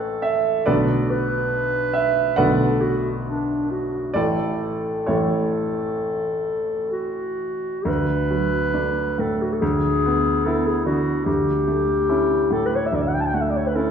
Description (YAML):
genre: classical, romantic duo for clarinet and grand piano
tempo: 60-74 BPM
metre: 4/4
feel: rubato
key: unclear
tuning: A4 = 441 Hz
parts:
  - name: warm clarinet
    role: melody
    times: 0.0-13.9 s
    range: D4 to A5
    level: -23 LUFS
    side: left 2 dB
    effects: none
  - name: clear grand piano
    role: accompaniment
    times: 0.0-13.9 s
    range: A1 to F#5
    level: -22 LUFS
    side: right 2 dB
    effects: none
room: wet recital hall reverb, RT60 1.5 s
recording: recorded in a church or concert hall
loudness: -19 LUFS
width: side -7 dB against mid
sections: 0.0-7.9 A section; 7.9-13.9 B section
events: none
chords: 0.0 A; 0.7 Bm7; 4.2 A; 7.9 D; 9.6 E7/D; 11.3 A7/D